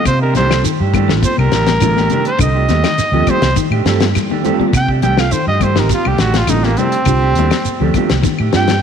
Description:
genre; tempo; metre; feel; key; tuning
afrobeat; 103 BPM; 4/4; straight; C dorian; A4 = 440 Hz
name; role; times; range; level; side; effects
clear trumpet; melody; 0.0-8.8 s; Bb3 to G5; -18 LUFS; right 1 dB; none
mellow tine electric piano; accompaniment; 0.0-8.7 s; C4 to A4; -23 LUFS; right 11 dB; ensemble chorus
clean electric guitar; arpeggios; 0.0-8.7 s; C3 to G3; -23 LUFS; left 9 dB; spring reverb
fingered electric bass; bass; 0.1-8.8 s; A1 to C3; -16 LUFS; right 1 dB; none
damped 70s drum kit; drums; 0.1-8.8 s; hi-hat, kick drum, snare drum; -20 LUFS; left 5 dB; none
claves; percussion; 0.1-8.5 s; none; -30 LUFS; left 11 dB; none
shekere; percussion; 0.1-8.7 s; none; -23 LUFS; right 6 dB; none
mellow electric guitar; stabs; 0.2-8.7 s; Eb3 to G4; -21 LUFS; right 9 dB; none
congas; percussion; 0.4-8.8 s; none; -22 LUFS; left 11 dB; none
room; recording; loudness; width
moderate echo chamber reverb, RT60 2.2 s; 1960s-style stereo with parts hard left and right; -12 LUFS; side -7 dB against mid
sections
0.0-8.8 A section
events
trumpet solo 0.0-8.8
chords
0.0 Cm69

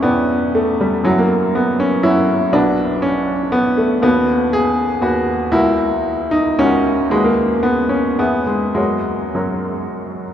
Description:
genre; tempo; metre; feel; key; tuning
classical, romantic character piece for solo piano; 100-125 BPM; 3/4; rubato; B minor, B major from 4.0 s; A4 = 441 Hz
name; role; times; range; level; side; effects
bright upright piano; solo; 0.0-10.3 s; B1 to G5; -14 LUFS; equal; none
room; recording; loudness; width
wet cathedral reverb, RT60 5.6 s; recorded in a church or concert hall; -14 LUFS; side -10 dB against mid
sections
0.0-10.3 A section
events
none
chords
0.0 Em7; 1.1 F#5; 2.5 Bm; 4.0 B/D#; 5.5 F#7/C#; 7.1 B/D#; 8.2 E; 8.8 F#

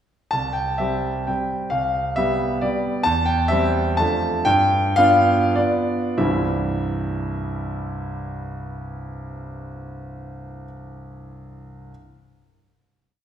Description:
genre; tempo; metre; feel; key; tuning
classical, romantic triple-time dance for piano with dotted rhythms; 89-141 BPM; 3/4; rubato; C major; A4 = 440 Hz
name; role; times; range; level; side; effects
clear concert grand piano; solo; 0.3-11.9 s; C2 to A5; -20 LUFS; equal; none
room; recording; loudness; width
wet recital hall reverb, RT60 1.7 s; recorded in a church or concert hall; -19 LUFS; side -9 dB against mid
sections
0.3-6.2 A section; 6.2-9.8 final chord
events
slowing down 2.4-6.2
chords
0.3 C; 1.7 G7/C; 3.0 C/E; 4.0 Dm/F; 4.5 G7; 6.2 C

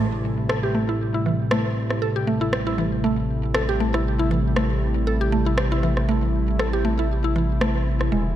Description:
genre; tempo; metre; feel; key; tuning
afro house; 118 BPM; 4/4; swing 55% on 16ths; A minor; A4 = 441 Hz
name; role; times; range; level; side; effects
warm analog pad; sustained chords; 0.0-8.4 s; C3 to E4; -26 LUFS; equal; chorus
mallet-like synth pluck; arpeggios; 0.0-8.3 s; E3 to A4; -25 LUFS; right 1 dB; chorus, digital delay
smooth synth bass; bass; 0.0-8.4 s; E1 to A1; -24 LUFS; equal; none
electronic rim click; drums; 0.5-8.1 s; none; -28 LUFS; right 1 dB; studio reverb
room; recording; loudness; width
light reverb, digital ambience; dark, warm production; -20 LUFS; side -11 dB against mid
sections
0.0-8.4 A section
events
none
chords
0.0 Am7

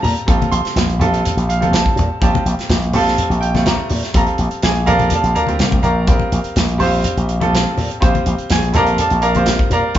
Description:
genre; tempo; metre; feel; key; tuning
electric jazz fusion; 124 BPM; 4/4; straight; Bb major; A4 = 440 Hz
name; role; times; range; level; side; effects
clear baby grand piano; accompaniment; 0.0-10.0 s; G3 to C6; -18 LUFS; right 1 dB; none
slap bass with an envelope filter; bass; 0.0-10.0 s; Bb1 to Bb2; -18 LUFS; equal; none
modern studio drum kit; drums; 0.0-10.0 s; hi-hat, kick drum, snare drum; -19 LUFS; equal; none
congas; percussion; 0.0-9.8 s; none; -22 LUFS; left 2 dB; none
room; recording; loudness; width
moderate large studio reverb, RT60 0.9 s; band playing live in one room, nothing above 7.6 kHz; -13 LUFS; side -12 dB against mid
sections
0.0-10.0 A section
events
none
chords
0.0 Bbmaj9

